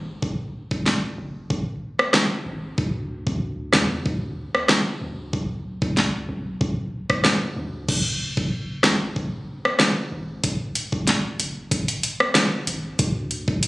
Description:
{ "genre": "dancehall", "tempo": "94 BPM", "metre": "4/4", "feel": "straight", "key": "unclear", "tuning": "A4 = 441 Hz", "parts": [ { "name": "warm 808-style bass", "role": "bass", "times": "0.0-13.7 s", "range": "E1 to E2", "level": "-30 LUFS", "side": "equal", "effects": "none" }, { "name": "pop drum kit", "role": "drums", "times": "0.2-13.7 s", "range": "crash cymbal, hi-hat, kick drum, rim click, snare drum", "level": "-20 LUFS", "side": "equal", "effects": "none" } ], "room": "moderate plate reverb, RT60 2.8 s", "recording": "recorded on a phone in the room, club reverb", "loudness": "-21 LUFS", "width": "side -20 dB against mid", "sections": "0.0-7.9 A section; 7.9-13.7 B section", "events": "none", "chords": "none" }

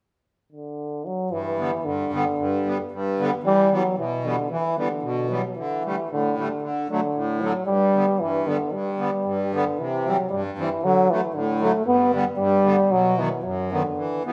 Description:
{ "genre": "alpine folk, alpine dance band", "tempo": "114 BPM", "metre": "2/4", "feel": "swing 53% on 8ths", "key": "G major", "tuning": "A4 = 440 Hz", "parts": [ { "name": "warm euphonium", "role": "melody", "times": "0.5-14.3 s", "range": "D3 to B3", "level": "-25 LUFS", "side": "equal", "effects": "none" }, { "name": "accordion", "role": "accompaniment", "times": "1.3-14.3 s", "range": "F#2 to C4", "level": "-28 LUFS", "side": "equal", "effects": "none" } ], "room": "wet large studio reverb, RT60 1.3 s", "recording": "band playing live in one room", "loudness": "-23 LUFS", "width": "mono", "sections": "0.2-1.3 A section; 1.3-9.8 B section; 9.8-14.3 C section", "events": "none", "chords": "0.2 N.C.; 1.3 G; 3.4 Em7; 5.6 Dsus4; 6.6 D; 7.7 G; 9.8 C; 10.8 D; 11.9 G; 12.9 B" }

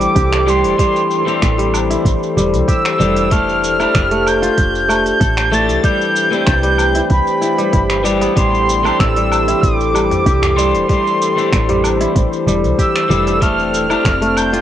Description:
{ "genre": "organic downtempo", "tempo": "95 BPM", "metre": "4/4", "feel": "straight", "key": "A minor", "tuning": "A4 = 441 Hz", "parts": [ { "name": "breathy flute-like synth lead", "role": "melody", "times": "0.0-14.6 s", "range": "B5 to A6", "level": "-18 LUFS", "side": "right 1 dB", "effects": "tremolo, analog chorus, cassette tape, analog delay" }, { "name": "electric guitar at the edge of break-up", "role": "accompaniment", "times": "0.0-14.6 s", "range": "E3 to G4", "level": "-22 LUFS", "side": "left 8 dB", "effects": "sidechain pumping, cassette tape, tape echo" }, { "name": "warbly tape-like pad", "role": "sustained chords", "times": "0.0-14.6 s", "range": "C4 to G5", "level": "-20 LUFS", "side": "right 1 dB", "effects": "chorus, built-in reverb, sidechain pumping, cassette tape" }, { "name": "kora", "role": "arpeggios", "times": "0.0-14.6 s", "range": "G3 to A4", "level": "-20 LUFS", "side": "right 1 dB", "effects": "cassette tape, tape echo" }, { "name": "woody FM bass", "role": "bass", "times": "0.0-14.6 s", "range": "E1 to C2", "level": "-19 LUFS", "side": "equal", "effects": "sidechain pumping" }, { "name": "organic electronic drum kit", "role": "drums", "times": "0.0-14.6 s", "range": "finger snaps, hi-hat, shaker, woodblock", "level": "-23 LUFS", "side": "right 1 dB", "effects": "cassette tape" }, { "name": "impact", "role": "sound effects", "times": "0.0-0.8 s", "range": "none", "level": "barely audible", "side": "none", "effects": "none" }, { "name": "electronic kick drum", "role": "drums", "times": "0.2-14.2 s", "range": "none", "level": "-16 LUFS", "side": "equal", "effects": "cassette tape" }, { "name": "darbuka", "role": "percussion", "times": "8.5-14.3 s", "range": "none", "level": "-27 LUFS", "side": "left 4 dB", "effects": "none" } ], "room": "light reverb, digital ambience", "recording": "home recording on cassette", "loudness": "-12 LUFS", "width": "side -11 dB against mid", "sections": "0.0-14.6 A section", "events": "impact 0.0-0.8", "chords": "0.0 Am7; 3.3 Fmaj7; 5.8 Cmaj7; 8.4 Am7; 13.4 Fmaj7" }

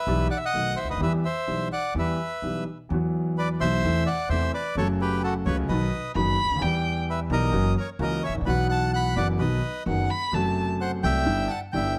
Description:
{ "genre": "tango", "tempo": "129 BPM", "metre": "4/4", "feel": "rubato", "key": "E minor", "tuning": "A4 = 440 Hz", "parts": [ { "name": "bandoneon", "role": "melody", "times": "0.0-12.0 s", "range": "F#4 to B5", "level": "-30 LUFS", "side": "equal", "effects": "slapback echo" }, { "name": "warm concert grand piano", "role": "accompaniment", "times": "0.1-11.9 s", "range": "F#1 to G4", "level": "-29 LUFS", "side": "equal", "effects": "none" }, { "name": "upright bass", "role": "bass", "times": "0.1-11.9 s", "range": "F#1 to E2", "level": "-31 LUFS", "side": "equal", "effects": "none" }, { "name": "warm violin", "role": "second line", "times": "6.2-7.0, 9.9-10.7 s", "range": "F#5 to B5", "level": "-30 LUFS", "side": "equal", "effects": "slapback echo" } ], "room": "light reverb", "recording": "faint mains hum", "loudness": "-25 LUFS", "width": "mono", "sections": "0.0-2.9 A section; 2.9-12.0 A section", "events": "none", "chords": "0.1 Em/B; 0.5 B7; 1.0 Em; 2.9 Esus2; 3.8 Am/E; 4.8 F#m; 5.7 B; 6.6 Em; 7.5 F#7; 8.5 Bsus4; 9.4 B; 10.3 F#dim; 11.3 Em7/G" }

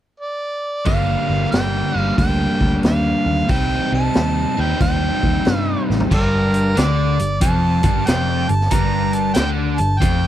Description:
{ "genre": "blues rock power trio and southern rock", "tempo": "92 BPM", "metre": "4/4", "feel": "swing 65% on 8ths", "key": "G minor", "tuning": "A4 = 435 Hz", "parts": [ { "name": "clear harmonica", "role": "melody", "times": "0.2-10.3 s", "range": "Bb4 to Bb5", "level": "-22 LUFS", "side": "right 2 dB", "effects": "overdrive" }, { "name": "biting overdriven guitar", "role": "riff", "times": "0.9-10.3 s", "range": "F2 to Eb4", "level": "-20 LUFS", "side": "left 1 dB", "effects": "none" }, { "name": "vintage muted picked electric bass", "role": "bass", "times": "0.9-10.3 s", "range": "F1 to G2", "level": "-21 LUFS", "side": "equal", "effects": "none" }, { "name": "raw garage drum kit", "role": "drums", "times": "0.9-10.2 s", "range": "crash cymbal, hi-hat, kick drum, snare drum, toms", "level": "-20 LUFS", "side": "equal", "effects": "none" }, { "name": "overdriven tonewheel organ", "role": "sustained chords", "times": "6.1-9.8 s", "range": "D4 to D5", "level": "-33 LUFS", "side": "right 3 dB", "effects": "none" } ], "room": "little or no reverb", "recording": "dry, close 1970s-style studio recording", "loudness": "-16 LUFS", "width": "side -12 dB against mid", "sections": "0.9-6.1 A section; 6.1-10.3 B section", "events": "drum fill 5.8-6.1", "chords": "0.0 N.C.; 0.9 Gm7; 3.5 Cm; 6.1 Gm" }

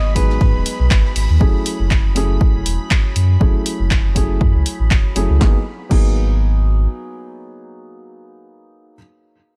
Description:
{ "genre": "deep house", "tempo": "120 BPM", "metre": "4/4", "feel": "swing 56% on 16ths", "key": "G# phrygian", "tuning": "A4 = 440 Hz", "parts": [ { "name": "direct-recorded clean electric guitar", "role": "melody", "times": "0.0-1.1 s", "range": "B4 to D#5", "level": "-30 LUFS", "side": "equal", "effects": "tape echo" }, { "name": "felt-muted upright piano", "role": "stabs", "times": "0.0-9.0 s", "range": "F#3 to G#4", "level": "-27 LUFS", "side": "equal", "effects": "tape echo" }, { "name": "sub bass with octave", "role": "bass", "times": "0.0-6.9 s", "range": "D#1 to G#2", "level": "-19 LUFS", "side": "equal", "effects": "sidechain pumping" }, { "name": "soft string machine", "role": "texture", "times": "0.0-5.4 s", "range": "B5", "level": "-38 LUFS", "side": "equal", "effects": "ensemble chorus, sidechain pumping" }, { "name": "electronic kick drum", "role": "drums", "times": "0.2-6.1 s", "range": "none", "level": "-18 LUFS", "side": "equal", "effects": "none" }, { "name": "natural country drum kit", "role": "drums", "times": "0.2-1.4 s", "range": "hi-hat, ride cymbal, snare drum", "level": "-40 LUFS", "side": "equal", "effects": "high-pass filter on cymbals, high-pass filter on hats, high-pass filter on snare, high-pass filter on room" }, { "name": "punchy analog drum machine", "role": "drums", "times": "0.2-6.1 s", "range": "crash cymbal, handclaps, hi-hat, snare drum", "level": "-26 LUFS", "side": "equal", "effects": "none" } ], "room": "small room ambience", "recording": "none", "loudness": "-16 LUFS", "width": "mono", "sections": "0.0-5.4 A section; 5.4-9.4 B section", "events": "none", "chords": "0.0 G#m7; 1.4 F#m9; 5.4 G#m9" }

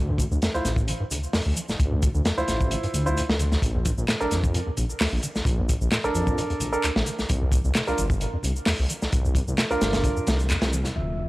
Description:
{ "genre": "breakbeat, breaks", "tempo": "131 BPM", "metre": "4/4", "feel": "swing 53% on 16ths", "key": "unclear", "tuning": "A4 = 440 Hz", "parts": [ { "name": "detuned saw bass", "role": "bass", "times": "0.0-11.3 s", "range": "G1 to F2", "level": "-26 LUFS", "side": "equal", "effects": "tube saturation" }, { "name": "deep acid bass", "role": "riff", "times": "0.1-10.9 s", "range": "D1 to F3", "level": "-30 LUFS", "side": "equal", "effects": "lush chorus, analog delay" }, { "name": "crunchy breakbeat drum kit", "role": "drums", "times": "0.2-11.0 s", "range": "hi-hat, kick drum, snare drum", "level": "-26 LUFS", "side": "equal", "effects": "none" }, { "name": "electronic shaker and handclaps", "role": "drums", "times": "0.2-10.9 s", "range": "none", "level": "-32 LUFS", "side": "equal", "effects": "overdrive" }, { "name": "congas", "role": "percussion", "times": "0.2-10.4 s", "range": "none", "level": "-39 LUFS", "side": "left 2 dB", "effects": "none" }, { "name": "warm concert grand piano", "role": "stabs", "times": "0.5-10.4 s", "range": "D4 to C5", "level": "-29 LUFS", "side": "right 2 dB", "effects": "analog delay" }, { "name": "mellow tonewheel organ", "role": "sustained chords", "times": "11.0-11.3 s", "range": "C3 to E5", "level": "-30 LUFS", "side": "left 1 dB", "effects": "slow rotary speaker, sidechain pumping, low-pass filter" }, { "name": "impact", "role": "sound effects", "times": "11.0-11.3 s", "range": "none", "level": "-33 LUFS", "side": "equal", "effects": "none" } ], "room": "studio reverb", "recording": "dry, gritty hardware recording, cassette tape", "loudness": "-22 LUFS", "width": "side -19 dB against mid", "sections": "0.0-11.0 A section", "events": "filter sweep on acid bass 0.0-11.0; band accent 10.5; impact 11.0-11.3", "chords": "0.0 Dm9; 3.6 Bbmaj7; 7.3 C9sus4" }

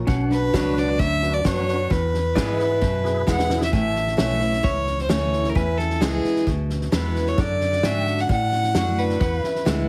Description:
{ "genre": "honky-tonk and classic country", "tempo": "132 BPM", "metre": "4/4", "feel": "straight", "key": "A major", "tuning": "A4 = 439 Hz", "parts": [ { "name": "picked steel-string acoustic guitar", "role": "accompaniment", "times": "0.0-9.9 s", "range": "E2 to F#4", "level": "-29 LUFS", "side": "equal", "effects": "none" }, { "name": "pedal steel guitar", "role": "sustained chords", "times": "0.0-9.9 s", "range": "D4 to A5", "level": "-32 LUFS", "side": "equal", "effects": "none" }, { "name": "vintage muted fingered electric bass", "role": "bass", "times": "0.0-9.9 s", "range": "A1 to A2", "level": "-28 LUFS", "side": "equal", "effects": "none" }, { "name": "natural country drum kit", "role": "drums", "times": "0.1-9.8 s", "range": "hi-hat, kick drum, snare drum", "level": "-28 LUFS", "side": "equal", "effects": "none" }, { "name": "rich fiddle", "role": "melody", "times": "0.3-9.7 s", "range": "G#4 to F#5", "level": "-27 LUFS", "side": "equal", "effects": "none" }, { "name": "tonewheel organ", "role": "accompaniment", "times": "0.5-3.6 s", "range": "D4 to B4", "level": "-33 LUFS", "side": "equal", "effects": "chorus vibrato, fast rotary speaker" } ], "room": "moderate studio reverb, RT60 0.6 s", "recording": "heavily compressed radio sound", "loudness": "-22 LUFS", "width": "mono", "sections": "0.0-3.7 A section; 3.7-9.9 B section", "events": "drum fill 3.3-3.7", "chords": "0.1 Bm; 1.9 E; 3.7 A; 5.6 E; 7.4 D; 9.2 E" }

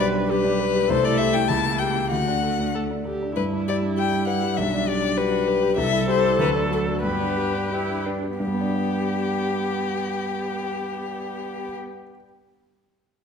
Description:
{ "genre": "quick classical-period movement for piano quartet", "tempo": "87-101 BPM", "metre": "2/4", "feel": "rubato", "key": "G major", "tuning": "A4 = 439 Hz", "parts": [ { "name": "rich violin", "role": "melody", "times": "0.0-11.8 s", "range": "G4 to A5", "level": "-25 LUFS", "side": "left 8 dB", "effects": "none" }, { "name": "warm cello", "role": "second line", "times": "0.0-11.7 s", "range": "F#3 to E4", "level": "-29 LUFS", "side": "right 5 dB", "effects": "none" }, { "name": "warm concert grand piano", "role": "accompaniment", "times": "0.0-12.2 s", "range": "B1 to D5", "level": "-26 LUFS", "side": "left 1 dB", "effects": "none" }, { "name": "warm viola", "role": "accompaniment", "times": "0.0-11.8 s", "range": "D4 to B4", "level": "-29 LUFS", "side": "right 2 dB", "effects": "none" } ], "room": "wet scoring stage reverb, RT60 1.5 s", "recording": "none", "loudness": "-21 LUFS", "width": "side -6 dB against mid", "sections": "0.0-8.4 A section; 8.4-11.0 B section", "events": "slowing down 5.2-8.4", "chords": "0.0 G/B; 0.9 Am7/C; 1.5 C#dim7; 2.1 D; 3.4 G; 4.6 G/B; 5.8 Am7/C; 6.4 D; 7.0 G" }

